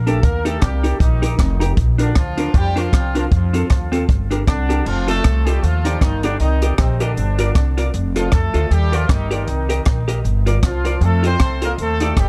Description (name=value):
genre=ska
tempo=156 BPM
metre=4/4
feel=swing 58% on 8ths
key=unclear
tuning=A4 = 444 Hz
part: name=upright bass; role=bass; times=0.0-12.3 s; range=F1 to F2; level=-21 LUFS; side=equal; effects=none
part: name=warm horn section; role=melody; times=0.1-12.3 s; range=C3 to C5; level=-26 LUFS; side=equal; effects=analog delay
part: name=vintage hollow-body jazz guitar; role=accompaniment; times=0.1-12.1 s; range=C4 to Eb5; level=-26 LUFS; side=equal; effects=analog delay
part: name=compact cocktail drum kit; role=drums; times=0.1-12.3 s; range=crash cymbal, hi-hat, kick drum, rim click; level=-21 LUFS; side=equal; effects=none
part: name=group handclap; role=percussion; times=0.6-12.3 s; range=none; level=-40 LUFS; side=equal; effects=none
room=small room ambience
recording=none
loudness=-18 LUFS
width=mono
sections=0.0-4.9 A section; 4.9-12.3 B section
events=none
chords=0.2 Eb; 1.8 Bb; 3.3 F; 4.1 Gm; 4.9 F7; 5.6 Ebmaj7; 6.4 Cm7; 7.2 Gm7; 7.9 F7; 8.7 Ebmaj7; 9.5 Cm7; 10.2 Gm7; 11.0 F7; 11.8 Ebmaj7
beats=| 0.23 0.62 1.01 1.39 | 1.78 2.16 2.55 2.93 | 3.32 3.70 4.09 4.47 | 4.86 5.24 5.63 6.01 | 6.40 6.78 7.17 7.55 | 7.94 8.32 8.71 9.09 | 9.48 9.86 10.25 10.63 | 11.02 11.40 11.79 12.17